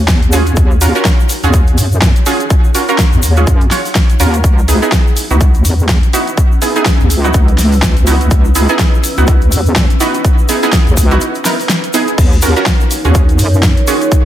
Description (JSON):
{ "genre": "bass house", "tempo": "124 BPM", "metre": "4/4", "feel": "swing 58% on 16ths", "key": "unclear", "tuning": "A4 = 443 Hz", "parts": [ { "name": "orchestra-hit-like synth stab", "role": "stabs", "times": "0.0-14.0 s", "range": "Cb4 to Db5", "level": "-16 LUFS", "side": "right 3 dB", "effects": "built-in reverb, vintage 12-bit sampler grit, sidechain pumping, digital delay" }, { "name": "wobble bass", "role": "bass", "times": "0.0-13.8 s", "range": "Db2 to Gb2", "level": "-12 LUFS", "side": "equal", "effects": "chorus, sidechain pumping" }, { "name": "granular cloud pad", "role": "texture", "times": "0.0-14.2 s", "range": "Db4 to Fb6", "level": "-25 LUFS", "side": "left 2 dB", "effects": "built-in reverb, sidechain pumping" }, { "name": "big-room dance drum kit", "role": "drums", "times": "0.1-14.2 s", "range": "crash cymbal, hi-hat, snare drum", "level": "-18 LUFS", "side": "equal", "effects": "overdrive" }, { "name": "electronic kick drum", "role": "drums", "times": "0.1-14.2 s", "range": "none", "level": "-10 LUFS", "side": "equal", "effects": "overdrive" }, { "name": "egg shaker", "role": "percussion", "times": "0.1-14.2 s", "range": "none", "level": "-23 LUFS", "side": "left 3 dB", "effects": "none" }, { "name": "dark analog pad", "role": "sustained chords", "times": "12.9-14.2 s", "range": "Eb4 to Db5", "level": "-18 LUFS", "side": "right 2 dB", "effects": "chorus, sidechain pumping" } ], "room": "digital ambience", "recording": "none", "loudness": "-9 LUFS", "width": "side -12 dB against mid", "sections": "0.0-14.2 A section", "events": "fade-in on ambient pad 0.0-14.2; filter sweep on wobble bass 0.0-14.2; break 11.2-12.2", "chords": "0.0 Ebm7; 4.4 Dbm7; 12.2 Ebm7" }